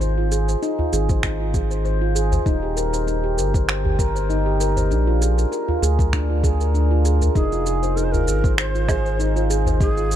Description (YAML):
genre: organic downtempo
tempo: 98 BPM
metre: 4/4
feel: swing 54% on 16ths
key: F dorian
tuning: A4 = 442 Hz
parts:
  - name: handpan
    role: arpeggios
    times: 0.0-10.2 s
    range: D4 to C5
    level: -23 LUFS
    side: equal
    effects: tape echo
  - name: round analog bass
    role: bass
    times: 0.0-10.2 s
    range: Eb1 to D2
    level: -21 LUFS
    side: equal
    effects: tube saturation, sidechain pumping
  - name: electronic shaker, finger snaps and woodblock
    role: drums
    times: 0.0-10.2 s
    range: none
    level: -28 LUFS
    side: right 3 dB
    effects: overdrive
  - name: udu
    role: percussion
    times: 0.8-9.8 s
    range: none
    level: -25 LUFS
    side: left 1 dB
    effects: none
  - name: electronic kick drum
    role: drums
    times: 1.1-9.9 s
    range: none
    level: -21 LUFS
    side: equal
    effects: overdrive
  - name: breathy bright low Native American-style wooden flute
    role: melody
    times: 7.4-10.2 s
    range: Ab4 to C5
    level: -27 LUFS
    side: right 1 dB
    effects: tape echo
room: small room ambience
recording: dark, warm production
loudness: -18 LUFS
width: side -11 dB against mid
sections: 0.0-7.4 A section; 7.4-10.2 A section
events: none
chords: 0.0 Fm; 2.5 Eb6; 4.9 Bb7; 7.4 Fm7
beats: | 0.01 0.62 1.24 1.85 | 2.46 3.07 3.68 4.30 | 4.91 5.52 6.13 6.75 | 7.36 7.97 8.58 9.19 | 9.81